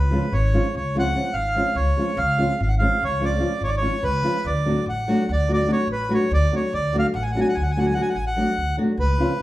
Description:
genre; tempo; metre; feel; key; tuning
balkan folk, Balkan wedding band; 290 BPM (eighths); 11/8; straight; unclear; A4 = 440 Hz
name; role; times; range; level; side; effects
accordion; melody; 0.0-9.4 s; B4 to G#5; -24 LUFS; right 1 dB; none
upright bass; bass; 0.0-9.2 s; G#1 to D2; -23 LUFS; equal; none
nylon-string guitar; accompaniment; 0.1-9.3 s; E#3 to F#4; -24 LUFS; equal; none
room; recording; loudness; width
moderate large studio reverb, RT60 0.8 s; band playing live in one room; -19 LUFS; side -16 dB against mid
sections
0.0-9.4 A section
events
none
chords
0.0 C#; 4.4 D

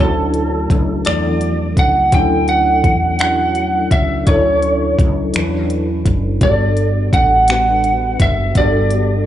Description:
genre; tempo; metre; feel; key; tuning
slow six-eight R&B; 56 BPM (dotted quarters); 6/8; straight; D major; A4 = 444 Hz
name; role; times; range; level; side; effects
lightly driven lead guitar; melody; 0.0-9.3 s; A4 to G5; -16 LUFS; right 1 dB; slapback echo
tine electric piano; accompaniment; 0.0-9.3 s; F3 to B4; -19 LUFS; left 1 dB; ensemble chorus
woody fretless electric bass; bass; 0.0-9.2 s; F#1 to E2; -19 LUFS; equal; ensemble chorus
smooth R&B drum kit; drums; 0.3-9.1 s; finger snaps, hi-hat, kick drum; -16 LUFS; equal; none
room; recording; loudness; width
light reverb, digital ambience; live gig heard through the venue's PA, club reverb, nothing above 10.8 kHz; -12 LUFS; side -11 dB against mid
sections
0.0-9.3 A section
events
none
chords
0.0 Dmaj9; 6.4 Gmaj9

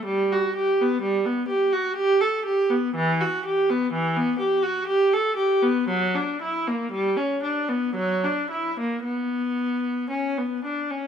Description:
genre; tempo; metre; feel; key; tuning
classical, baroque-style suite movement for unaccompanied viola; 55-64 BPM; 3/4; rubato; unclear; A4 = 440 Hz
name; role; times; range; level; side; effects
rich viola; solo; 0.0-11.1 s; E3 to A4; -21 LUFS; equal; none
room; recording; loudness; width
light reverb; close, detailed microphones; -21 LUFS; side -8 dB against mid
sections
0.0-11.1 A section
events
none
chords
none

